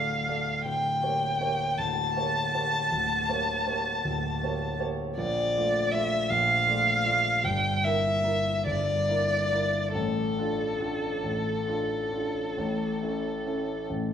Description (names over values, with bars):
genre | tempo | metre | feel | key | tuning
classical, romantic duo for violin and grand piano | 44-54 BPM (dotted quarters) | 12/8 | rubato | unclear | A4 = 440 Hz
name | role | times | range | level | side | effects
rich violin | melody | 0.0-13.9 s | A4 to A5 | -27 LUFS | equal | none
clear concert grand piano | accompaniment | 0.0-14.1 s | D1 to D5 | -30 LUFS | equal | none
room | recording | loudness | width
wet recital hall reverb, RT60 1.4 s | recorded in a church or concert hall | -25 LUFS | side -8 dB against mid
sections
0.0-14.1 A section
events
none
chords
0.0 Dm; 0.7 A7b9/D; 5.2 Bbmaj7; 7.4 Em7b5/G; 10.0 Dm/A; 12.6 A